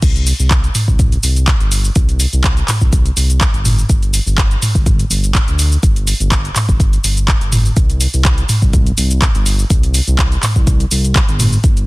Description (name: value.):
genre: afro house.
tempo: 124 BPM.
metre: 4/4.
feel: swing 54% on 16ths.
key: unclear.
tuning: A4 = 440 Hz.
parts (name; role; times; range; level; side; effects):
smooth gliding synth bass; bass; 0.0-11.9 s; G1 to D2; -15 LUFS; equal; tube saturation, sidechain pumping.
afro-pop drum kit; drums; 0.0-11.9 s; cabasa, crash cymbal, handclaps, hi-hat, toms; -17 LUFS; equal; none.
electronic kick drum; drums; 0.0-11.7 s; none; -13 LUFS; equal; none.
room: little or no reverb.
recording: dense, heavily limited modern master.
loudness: -11 LUFS.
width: side -22 dB against mid.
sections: 0.0-11.9 A section.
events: none.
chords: none.